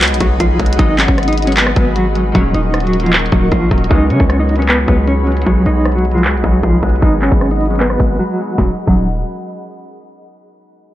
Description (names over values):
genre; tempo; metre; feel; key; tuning
hip hop, trap; 154 BPM; 4/4; half-time; Eb minor; A4 = 438 Hz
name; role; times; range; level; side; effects
Celtic harp; accompaniment; 0.0-9.1 s; Eb3 to F#4; -20 LUFS; left 1 dB; none
glassy FM pad; sustained chords; 0.0-8.8 s; Ab4 to Db6; -23 LUFS; left 1 dB; ensemble chorus, built-in reverb
hard-hitting 808-style bass; bass; 0.0-9.2 s; Eb1 to Db3; -16 LUFS; equal; none
trap drum kit; drums; 0.0-9.0 s; crash cymbal, handclaps, hi-hat, kick drum, rim click, snare drum; -14 LUFS; equal; none
mellow electric guitar; melody; 0.2-9.1 s; F3 to Eb5; -17 LUFS; equal; tremolo, digital delay
room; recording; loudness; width
digital ambience; low-pass filter; -11 LUFS; side -14 dB against mid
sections
0.0-8.6 A section; 8.6-10.1 B section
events
filter sweep 0.0-8.6; break 8.2-8.6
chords
0.0 B6; 0.8 Abm7; 2.3 Ebm7; 3.9 Db7sus4; 5.5 B6; 7.0 Abm7; 8.6 Ebm7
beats
0.01 0.40 | 0.79 1.18 1.57 1.96 | 2.35 2.74 3.13 3.52 | 3.91 4.30 4.69 5.08 | 5.47 5.86 6.25 6.63 | 7.02 7.41 7.80 8.19 | 8.58 8.97